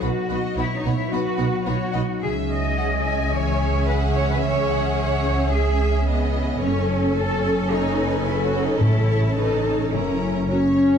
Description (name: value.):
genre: cinematic.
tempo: 109 BPM.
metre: 4/4.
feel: straight.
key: unclear.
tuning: A4 = 439 Hz.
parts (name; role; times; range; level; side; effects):
clear symphonic violin section; melody; 0.0-11.0 s; A4 to G#5; -32 LUFS; left 3 dB; none.
warm symphonic violin section; second line; 0.0-11.0 s; C#5 to B5; -31 LUFS; left 3 dB; none.
warm symphonic viola section; accompaniment; 0.0-11.0 s; B3 to A4; -27 LUFS; equal; none.
concert harp; arpeggios; 0.0-11.0 s; F#2 to G#5; -28 LUFS; left 7 dB; none.
rich symphonic cello section; bass; 0.0-10.5 s; B3 to D#5; -26 LUFS; right 2 dB; none.
warm studio double bass section; bass; 0.0-10.9 s; F#1 to C#2; -24 LUFS; right 3 dB; none.
timpani; percussion; 8.8-9.6 s; A2; -22 LUFS; equal; none.
clear clarinet; second line; 10.5-11.0 s; C#4; -24 LUFS; left 1 dB; none.
mellow hollow concert flute; second line; 10.5-11.0 s; C#5; -31 LUFS; left 6 dB; none.
dark French horn section; sustained chords; 10.5-11.0 s; C#4; -19 LUFS; left 1 dB; none.
warm trumpet section; stabs; 10.5-11.0 s; C#4; -23 LUFS; right 2 dB; none.
room: wet recital hall reverb, RT60 1.4 s.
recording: dark, warm production.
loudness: -19 LUFS.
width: side -7 dB against mid.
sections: 0.0-11.0 A section.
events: none.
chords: 0.0 B; 2.2 C#m; 6.6 F#madd9; 8.8 A; 9.9 F#7.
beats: | 0.03 0.58 1.12 1.67 | 2.22 2.77 3.32 3.86 | 4.41 4.96 5.51 6.05 | 6.60 7.15 7.70 8.25 | 8.80 9.36 9.93 10.50.